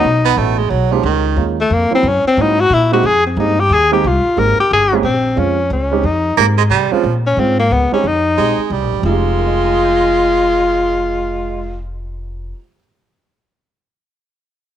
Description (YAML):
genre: jazz, small-group swing and bop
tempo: 180 BPM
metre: 3/4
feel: swing 63% on 8ths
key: F minor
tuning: A4 = 440 Hz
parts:
  - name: breathy tenor saxophone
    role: melody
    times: 0.0-11.8 s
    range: A3 to Bb4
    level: -14 LUFS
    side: left 3 dB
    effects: none
  - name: dark concert grand piano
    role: accompaniment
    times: 0.0-12.8 s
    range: F2 to Bb6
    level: -20 LUFS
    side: right 10 dB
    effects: none
  - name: upright bass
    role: bass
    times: 0.0-12.5 s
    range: F1 to C3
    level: -19 LUFS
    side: left 1 dB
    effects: none
  - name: breathy baritone saxophone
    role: second line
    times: 0.2-1.5, 6.4-11.8 s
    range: Eb3 to B3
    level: -18 LUFS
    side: right 11 dB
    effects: none
room: moderate spring reverb, RT60 1.5 s, small room ambience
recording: 1960s-style stereo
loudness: -12 LUFS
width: side -10 dB against mid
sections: 0.0-5.0 A section; 5.0-9.0 B section; 9.0-11.0 C section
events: none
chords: 0.0 B9; 1.0 Db69; 2.0 Gb7#11; 3.0 Fm11; 5.0 Bbm7; 5.7 Db5; 6.0 Fm9; 6.7 C5; 7.0 Bbm7; 7.7 Db5; 8.0 Fm9; 8.7 C5; 9.0 Fm9